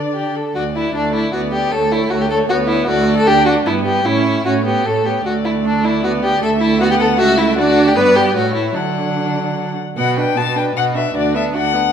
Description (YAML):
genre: quick classical-period movement for string quartet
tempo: 153 BPM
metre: 3/4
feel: rubato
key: D major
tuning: A4 = 440 Hz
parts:
  - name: rich violin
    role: melody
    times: 0.0-11.9 s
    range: B4 to A5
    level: -22 LUFS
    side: left 9 dB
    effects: none
  - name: warm viola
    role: accompaniment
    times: 0.0-11.9 s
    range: F#3 to D4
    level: -20 LUFS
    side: right 4 dB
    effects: none
  - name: warm cello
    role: bass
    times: 0.0-11.9 s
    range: C#2 to D3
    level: -22 LUFS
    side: right 5 dB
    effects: none
  - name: rich violin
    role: second line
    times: 0.1-11.9 s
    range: D4 to B4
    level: -17 LUFS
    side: left 1 dB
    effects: none
room: moderate scoring stage reverb, RT60 1.6 s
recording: none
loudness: -14 LUFS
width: side -8 dB against mid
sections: 0.5-10.0 A section; 10.0-11.9 B section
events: none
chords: 0.0 D5; 3.7 Em/G (rootless); 4.1 A; 5.3 D5; 6.4 A/D; 7.6 D; 8.0 G; 8.4 A; 8.8 D; 10.0 Bm; 11.2 Bm/D